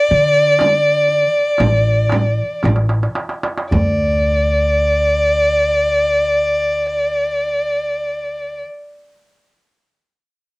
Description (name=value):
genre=Arabic maqam ensemble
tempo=108-125 BPM (eighths)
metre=10/8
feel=straight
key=unclear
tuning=A4 = 440 Hz
part: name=rich violin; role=melody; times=0.0-8.6 s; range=D5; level=-15 LUFS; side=equal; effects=cassette tape
part: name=upright bass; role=bass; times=0.1-8.6 s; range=A1 to D3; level=-19 LUFS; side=equal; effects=none
part: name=darbuka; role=percussion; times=0.1-4.2 s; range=none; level=-23 LUFS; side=right 1 dB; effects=none
part: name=frame drum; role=percussion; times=0.6-4.2 s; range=none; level=-22 LUFS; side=right 3 dB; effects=none
room=moderate small room reverb, RT60 0.5 s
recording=home recording on cassette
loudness=-14 LUFS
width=side -23 dB against mid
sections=0.0-3.7 A section; 3.7-9.3 B section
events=slowing down 0.0-3.7; drum fill 2.6-3.7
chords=none